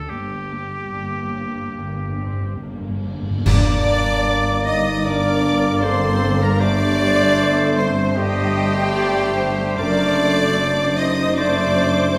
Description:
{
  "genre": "classical, slow romantic movement for symphony orchestra",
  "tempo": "70-78 BPM",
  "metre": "4/4",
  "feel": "rubato",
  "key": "G minor",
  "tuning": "A4 = 440 Hz",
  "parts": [
    { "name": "bright symphonic violin section", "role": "second line", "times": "0.0-12.2 s", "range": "G4 to Eb5", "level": "-30 LUFS", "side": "equal", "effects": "none" },
    { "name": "clear oboe", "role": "second line", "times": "0.0-12.2 s", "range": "G4 to D5", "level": "-30 LUFS", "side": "equal", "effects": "none" },
    { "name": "warm symphonic violin section", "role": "melody", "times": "0.1-12.2 s", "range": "D4 to Eb6", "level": "-30 LUFS", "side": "equal", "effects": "none" },
    { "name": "warm symphonic viola section", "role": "accompaniment", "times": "0.1-12.2 s", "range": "G3 to Eb5", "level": "-30 LUFS", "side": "equal", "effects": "none" },
    { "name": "rich studio double bass section", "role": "bass", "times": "0.1-12.2 s", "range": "F#1 to G1", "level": "-27 LUFS", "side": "equal", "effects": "none" },
    { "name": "rich symphonic cello section", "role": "bass", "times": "0.1-12.2 s", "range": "F#2 to G2", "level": "-28 LUFS", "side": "equal", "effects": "none" },
    { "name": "cymbal swell, clash cymbals and concert bass drum", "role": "percussion", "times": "0.1-5.0 s", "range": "none", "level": "-26 LUFS", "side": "equal", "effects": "none" },
    { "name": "timpani", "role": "percussion", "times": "0.1-4.6 s", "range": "G2", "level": "-27 LUFS", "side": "equal", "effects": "none" },
    { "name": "mellow French horn section", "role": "sustained chords", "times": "3.4-12.2 s", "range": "G3 to Eb4", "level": "-26 LUFS", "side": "equal", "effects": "none" },
    { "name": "bright clarinet", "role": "second line", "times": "3.5-11.9 s", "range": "G4 to Eb5", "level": "-28 LUFS", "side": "equal", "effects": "none" },
    { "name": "silver concert flute", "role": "second line", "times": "3.5-12.2 s", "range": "G4 to Eb5", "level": "-29 LUFS", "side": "equal", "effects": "none" },
    { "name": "mellow bassoon", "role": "accompaniment", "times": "3.5-12.1 s", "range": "A3 to Bb3", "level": "-29 LUFS", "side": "equal", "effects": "none" }
  ],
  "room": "wet scoring stage reverb, RT60 1.7 s",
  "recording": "none",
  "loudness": "-19 LUFS",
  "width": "mono",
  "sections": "0.0-3.5 A section; 3.5-12.2 B section",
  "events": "timpani fill 0.1-3.5; band accent 3.5-4.3",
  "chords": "0.1 Gm; 6.6 Am7b5/G; 9.8 D7/F#",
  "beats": "| 0.10 0.94 1.79 2.62 | 3.46 4.26 5.04 5.84 | 6.61 7.39 8.17 8.95 | 9.79 10.59 11.38 12.16"
}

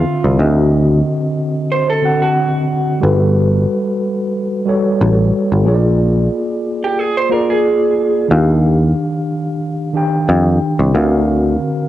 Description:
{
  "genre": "R&B, neo-soul",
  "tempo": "91 BPM",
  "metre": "4/4",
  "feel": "swing 54% on 16ths",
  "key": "unclear",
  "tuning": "A4 = 444 Hz",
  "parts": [
    { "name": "electric guitar through a small old amp", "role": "second line", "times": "0.0-8.3 s", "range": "F4 to C5", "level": "-17 LUFS", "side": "right 4 dB", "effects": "cassette tape" },
    { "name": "mellow tine electric piano", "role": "accompaniment", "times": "0.0-11.9 s", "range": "D3 to G5", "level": "-16 LUFS", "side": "equal", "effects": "medium stereo tremolo, cassette tape" },
    { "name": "picked electric bass", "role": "bass", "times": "0.0-11.6 s", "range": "G1 to F2", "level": "-12 LUFS", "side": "equal", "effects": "tube saturation" }
  ],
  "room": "light reverb",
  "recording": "home recording on cassette",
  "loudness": "-12 LUFS",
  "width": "side -13 dB against mid",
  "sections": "0.0-11.9 A section",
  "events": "none",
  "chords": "0.4 D7b9; 3.0 Gmaj9; 5.7 Bb7; 8.3 Ebmaj9; 10.9 D7alt",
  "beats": "| 0.38 1.04 1.70 2.36 | 3.02 3.68 4.34 5.00 | 5.66 6.31 6.97 7.63 | 8.29 8.95 9.61 10.27 | 10.93 11.59"
}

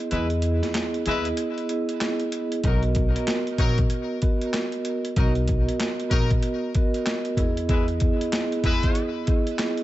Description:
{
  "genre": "hip hop, boom-bap hip-hop",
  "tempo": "95 BPM",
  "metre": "4/4",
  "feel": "swing 62% on 16ths",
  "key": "B major",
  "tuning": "A4 = 441 Hz",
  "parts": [
    { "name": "vibraphone with soft mallets", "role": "accompaniment", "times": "0.0-9.8 s", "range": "B3 to D#5", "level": "-26 LUFS", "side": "right 2 dB", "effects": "cassette tape, high-pass filter, low-pass filter" },
    { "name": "clear horn section", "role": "stabs", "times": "0.1-9.1 s", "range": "F#3 to B4", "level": "-32 LUFS", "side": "left 4 dB", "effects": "high-pass filter, low-pass filter, ping-pong delay" },
    { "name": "upright bass", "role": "bass", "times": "0.1-8.9 s", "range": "A#1 to E2", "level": "-26 LUFS", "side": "equal", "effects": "none" },
    { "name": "boom bap sampler-style drum kit", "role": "drums", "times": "0.1-9.8 s", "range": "handclaps, hi-hat, kick drum, snare drum", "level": "-24 LUFS", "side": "equal", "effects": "none" }
  ],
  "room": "small room ambience",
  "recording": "dark, warm production, nothing above 8.0 kHz",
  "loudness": "-22 LUFS",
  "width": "side -15 dB against mid",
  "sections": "0.0-9.8 A section",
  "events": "break 0.0-2.6",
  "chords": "0.0 Emaj7; 2.6 Bmaj7; 7.4 Emaj7",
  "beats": "| 0.11 0.74 1.38 2.01 | 2.64 3.27 3.90 4.53 | 5.17 5.80 6.43 7.06 | 7.69 8.32 8.96 9.59"
}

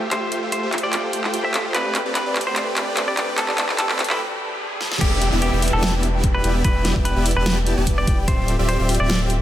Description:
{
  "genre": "future bass",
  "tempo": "147 BPM",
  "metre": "4/4",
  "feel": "swing 53% on 16ths, half-time",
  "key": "unclear",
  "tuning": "A4 = 440 Hz",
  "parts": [
    { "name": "muted chamber string section", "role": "sustained chords", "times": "0.0-9.4 s", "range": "E3 to E5", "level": "-35 LUFS", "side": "left 2 dB", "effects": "none" },
    { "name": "concert harp", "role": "arpeggios", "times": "0.0-9.4 s", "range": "G4 to G5", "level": "-32 LUFS", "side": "right 1 dB", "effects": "sidechain pumping, tape echo" },
    { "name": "supersaw chords", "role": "riff", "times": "0.0-9.4 s", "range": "A3 to A5", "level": "-25 LUFS", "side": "equal", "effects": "sidechain pumping, low-pass filter" },
    { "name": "riser and downlifter", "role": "sound effects", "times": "2.2-8.3 s", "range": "none", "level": "-32 LUFS", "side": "equal", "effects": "none" },
    { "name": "semi-hollow electric guitar", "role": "melody", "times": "0.1-9.2 s", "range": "E4 to E5", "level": "-26 LUFS", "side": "equal", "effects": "sidechain pumping, tape echo" },
    { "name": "dubstep drum kit", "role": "drums", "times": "0.1-9.4 s", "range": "crash cymbal, handclaps, hi-hat, snare drum", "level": "-24 LUFS", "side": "equal", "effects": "none" },
    { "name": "saturated sub bass", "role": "bass", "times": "5.0-9.4 s", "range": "D1 to E1", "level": "-21 LUFS", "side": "equal", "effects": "sidechain pumping" },
    { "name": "electronic kick drum", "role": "drums", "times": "5.0-8.4 s", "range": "none", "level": "-20 LUFS", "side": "equal", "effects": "overdrive" }
  ],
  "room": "light reverb",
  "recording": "high-pass filter",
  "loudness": "-18 LUFS",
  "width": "side -12 dB against mid",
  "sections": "0.0-5.0 A section; 5.0-9.4 B section",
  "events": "build-up 0.0-5.0; drum fill 0.0-4.2, 4.8; filter sweep on clean electric guitar 0.0-5.0; break 4.2-5.0; drop 5.0-9.4",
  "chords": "0.0 Fmaj9; 1.7 Am11; 5.0 Em7; 8.3 Dm11",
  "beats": "| 0.12 0.52 0.93 1.34 | 1.75 2.16 2.56 2.97 | 3.38 3.79 4.20 4.60 | 5.01 5.42 5.83 6.24 | 6.64 7.05 7.46 7.87 | 8.28 8.69 9.09"
}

